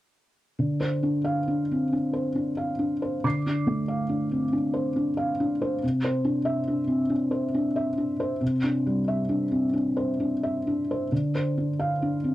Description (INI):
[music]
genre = neoclassical minimalist piano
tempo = 68 BPM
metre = 3/4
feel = rubato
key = D minor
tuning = A4 = 437 Hz
[part]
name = felt-muted upright piano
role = solo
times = 0.6-12.3 s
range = C3 to C7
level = -24 LUFS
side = equal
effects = none
[sound]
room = light reverb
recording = dry, close 1970s-style studio recording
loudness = -24 LUFS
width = side -15 dB against mid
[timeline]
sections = 0.6-11.1 A section; 11.1-12.3 B section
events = none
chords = 0.6 Dm7; 5.8 Cadd9; 11.1 Dm7